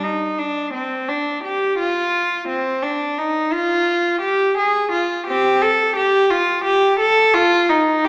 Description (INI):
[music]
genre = classical, baroque-style suite movement for unaccompanied cello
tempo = 86 BPM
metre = 4/4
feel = rubato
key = unclear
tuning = A4 = 440 Hz
[part]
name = rich cello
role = solo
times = 0.0-8.1 s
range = C4 to A4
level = -15 LUFS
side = equal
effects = none
[sound]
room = wet recital hall reverb, RT60 1.6 s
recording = recorded in a church or concert hall, small speaker sound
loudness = -15 LUFS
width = side -26 dB against mid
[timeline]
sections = 0.0-8.1 A section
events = none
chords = none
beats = 0.39 1.09 1.80 | 2.50 3.19 3.88 4.58 | 5.27 5.96 6.66 7.35 | 8.05